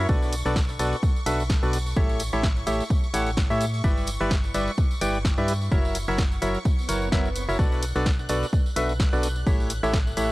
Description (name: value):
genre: piano house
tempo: 128 BPM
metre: 4/4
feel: swing 56% on 16ths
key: B minor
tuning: A4 = 443 Hz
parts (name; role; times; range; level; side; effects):
- string machine, violins; sustained chords; 0.0-10.3 s; C#6 to F#6; -38 LUFS; equal; ensemble chorus, sidechain pumping
- percussive organ stab; riff; 0.0-10.3 s; B2 to G5; -26 LUFS; equal; chorus, vintage 12-bit sampler grit, sidechain pumping, analog delay
- organ-like FM bass; bass; 0.0-10.3 s; F#1 to A2; -29 LUFS; equal; sidechain pumping
- electronic kick drum; drums; 0.1-10.0 s; none; -23 LUFS; equal; none
- tambourine; percussion; 0.1-10.3 s; none; -39 LUFS; right 2 dB; none
- punchy analog drum machine; drums; 0.3-10.3 s; hi-hat, snare drum; -31 LUFS; equal; none
- swell; sound effects; 6.8-7.6 s; none; -36 LUFS; right 2 dB; none
room: digital ambience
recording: dry, gritty hardware recording, cassette tape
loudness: -21 LUFS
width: side -19 dB against mid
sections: 0.0-10.3 A section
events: swell 6.8-7.6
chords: 0.1 Bm7; 2.0 A7; 3.8 G6; 5.7 F#7; 7.6 Bm7; 9.5 A7